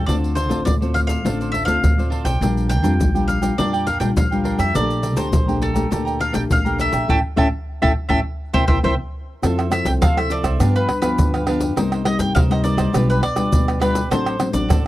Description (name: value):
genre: samba and choro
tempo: 102 BPM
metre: 4/4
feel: straight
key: D minor, F major from 9.4 s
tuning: A4 = 444 Hz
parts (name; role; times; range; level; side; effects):
- bowl-back mandolin; melody; 0.0-14.9 s; A4 to A5; -23 LUFS; equal; none
- cavaquinho; accompaniment; 0.0-14.9 s; D4 to Bb5; -28 LUFS; right 6 dB; none
- nylon-string guitar; accompaniment; 0.0-14.9 s; G2 to A4; -22 LUFS; left 3 dB; none
- upright bass; bass; 0.0-14.9 s; A1 to F3; -23 LUFS; right 1 dB; none
- tube shaker, surdo, pandeiro and tamborim; percussion; 0.1-14.8 s; none; -21 LUFS; equal; none
room: little or no reverb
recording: dry, close 1970s-style studio recording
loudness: -16 LUFS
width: side -15 dB against mid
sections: 0.0-9.4 A section; 9.4-14.9 B section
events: band accent 7.1-9.4; drum fill 8.3-9.4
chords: 0.1 Dm7; 2.4 Bb6; 4.7 Gmadd9/Bb; 7.1 A7; 8.3 C7; 9.4 Fmaj7; 10.6 G7; 11.8 Cm7; 12.9 G7/B; 14.1 D7/A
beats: | 0.08 0.66 1.24 1.83 | 2.41 3.00 3.58 4.16 | 4.75 5.33 5.92 6.50 | 7.09 7.67 8.26 8.84 | 9.43 10.01 10.60 11.19 | 11.77 12.36 12.94 13.53 | 14.11 14.70